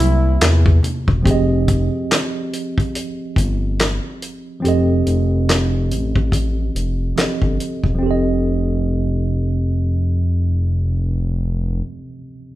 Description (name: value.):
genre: R&B, neo-soul.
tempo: 71 BPM.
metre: 4/4.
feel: swing 59% on 16ths.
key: unclear.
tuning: A4 = 439 Hz.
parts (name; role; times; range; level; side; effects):
breathy flugelhorn; melody; 0.0-0.8 s; E4; -23 LUFS; right 2 dB; none.
mellow tine electric piano; accompaniment; 0.0-12.6 s; C3 to Eb5; -22 LUFS; right 2 dB; medium stereo tremolo.
smooth synth bass; bass; 0.0-11.8 s; E1 to E2; -18 LUFS; equal; none.
warm soul drum kit; drums; 0.0-8.0 s; handclaps, hi-hat, kick drum, snare drum; -19 LUFS; left 1 dB; none.
congas; percussion; 0.8-1.1 s; none; -29 LUFS; left 2 dB; none.
room: moderate large studio reverb, RT60 1.2 s.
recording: band playing live in one room.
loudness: -16 LUFS.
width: side -15 dB against mid.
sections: 0.0-1.3 A section; 1.3-8.0 B section; 8.0-11.4 C section.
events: none.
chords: 0.0 C7; 1.3 Fm7; 4.6 F7.